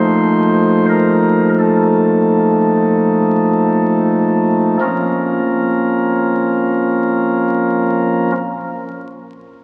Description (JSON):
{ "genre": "classical, chorale-style piece for pipe organ", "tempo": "34-46 BPM", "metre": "4/4", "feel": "rubato", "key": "Bb minor", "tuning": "A4 = 440 Hz", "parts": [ { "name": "pipe organ, flutes", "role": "solo", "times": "0.0-8.3 s", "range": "Bb1 to C5", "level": "-15 LUFS", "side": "equal", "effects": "none" } ], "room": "wet church reverb, RT60 3.4 s", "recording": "very old 78 rpm record, vinyl crackle", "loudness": "-15 LUFS", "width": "mono", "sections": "0.0-4.8 A section; 4.8-9.6 B section", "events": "slowing down 0.0-4.8", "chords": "0.0 F7/Bb; 4.8 Bbm" }